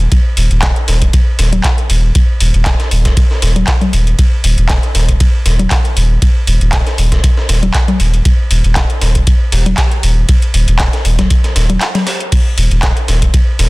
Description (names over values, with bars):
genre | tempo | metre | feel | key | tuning
acid house | 118 BPM | 4/4 | swing 54% on 16ths | unclear | A4 = 442 Hz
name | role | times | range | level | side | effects
warm sub bass | bass | 0.0-13.7 s | Eb1 | -11 LUFS | equal | sidechain pumping
electro analog drum machine | drums | 0.0-13.7 s | congas, crash cymbal, handclaps, hi-hat | -17 LUFS | left 1 dB | studio reverb
breakbeat sampler-style drum kit | drums | 0.1-13.7 s | hi-hat, ride cymbal, snare drum | -23 LUFS | right 1 dB | high-pass filter on cymbals, studio reverb, high-pass filter on snare, high-pass filter on hats, high-pass filter on room
electronic kick drum | drums | 0.1-13.4 s | none | -12 LUFS | equal | studio reverb
room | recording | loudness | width
digital ambience | dense, heavily limited modern master | -10 LUFS | side -22 dB against mid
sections
0.0-13.7 A section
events
break 11.8-12.3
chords
none